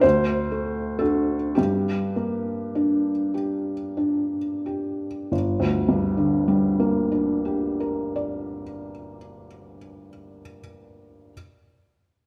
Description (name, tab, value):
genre	classical, romantic nocturne for solo piano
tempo	29-43 BPM (dotted quarters)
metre	6/8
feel	rubato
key	G minor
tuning	A4 = 440 Hz
part	felt-muted upright piano	solo	0.0-11.3 s	G1 to D5	-24 LUFS	equal	none
room	wet recital hall reverb, RT60 1.6 s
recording	none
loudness	-24 LUFS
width	mono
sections	0.0-5.3 A section; 5.3-9.1 B section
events	slowing down 0.0-5.3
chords	0.0 D7; 1.6 Gm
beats	0.03 | 1.57 3.33 | 5.32 7.23